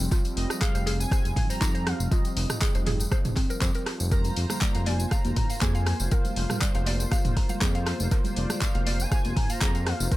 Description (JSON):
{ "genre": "afro house", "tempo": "120 BPM", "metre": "4/4", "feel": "swing 53% on 16ths", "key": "unclear", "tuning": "A4 = 440 Hz", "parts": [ { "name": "warm analog pad", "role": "sustained chords", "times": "0.0-10.2 s", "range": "F3 to C5", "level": "-35 LUFS", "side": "left 1 dB", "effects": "chorus, sidechain pumping" }, { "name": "smooth synth bass", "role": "bass", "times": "0.0-10.1 s", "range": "F1 to F2", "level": "-27 LUFS", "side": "equal", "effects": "sidechain pumping" }, { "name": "tambourine", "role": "percussion", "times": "0.0-10.2 s", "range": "none", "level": "-38 LUFS", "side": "left 1 dB", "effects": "none" }, { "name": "mallet-like synth pluck", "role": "arpeggios", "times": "0.1-10.2 s", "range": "C4 to Bb5", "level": "-37 LUFS", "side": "right 1 dB", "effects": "chorus, sidechain pumping, tape echo" }, { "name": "deep house drum kit", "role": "drums", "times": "0.1-10.2 s", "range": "handclaps, hi-hat, rim click, toms", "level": "-32 LUFS", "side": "equal", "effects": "dub echo" }, { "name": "electronic kick drum", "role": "drums", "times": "0.1-10.2 s", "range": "none", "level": "-25 LUFS", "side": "equal", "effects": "none" }, { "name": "expressive synth lead", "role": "melody", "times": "0.4-10.2 s", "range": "D5 to Bb5", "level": "-37 LUFS", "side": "equal", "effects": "analog chorus, tape echo" }, { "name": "congas", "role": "percussion", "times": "4.2-10.1 s", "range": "none", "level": "-35 LUFS", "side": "right 2 dB", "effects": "dub echo" } ], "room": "digital ambience", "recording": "echo-heavy mix", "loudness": "-23 LUFS", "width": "side -17 dB against mid", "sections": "0.0-10.2 A section", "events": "none", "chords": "0.0 F7(no3); 4.1 Bbsus2/F" }